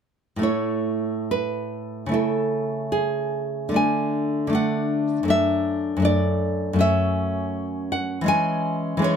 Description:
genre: romantic piece for solo classical guitar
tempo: 67-82 BPM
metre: 2/4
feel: rubato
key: A major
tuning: A4 = 441 Hz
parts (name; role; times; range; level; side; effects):
- nylon-string guitar; solo; 0.4-9.2 s; F#2 to G#5; -21 LUFS; equal; none
room: light reverb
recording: none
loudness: -21 LUFS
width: side -7 dB against mid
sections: 0.4-9.2 A section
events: none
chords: 0.4 A; 2.1 A/C#; 3.8 D; 5.3 D/F#; 6.8 F#m; 8.3 C#m/E

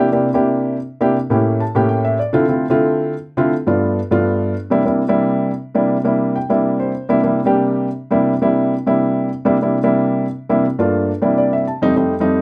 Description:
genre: jazz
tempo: 202 BPM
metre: 4/4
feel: straight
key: C mixolydian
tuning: A4 = 440 Hz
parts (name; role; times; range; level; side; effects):
- dark baby grand piano; solo; 0.0-12.4 s; F2 to A5; -17 LUFS; equal; none
room: moderate studio reverb, RT60 0.5 s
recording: close, detailed microphones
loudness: -17 LUFS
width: mono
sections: 0.0-7.1 A section; 7.1-12.4 A section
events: grand piano fill 1.5-2.3, 6.2-7.1, 11.2-11.8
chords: 0.0 C7; 1.2 A7b9; 2.3 Dm7; 3.5 G7; 4.7 C7; 10.6 Gm7; 11.2 C7; 11.8 F7

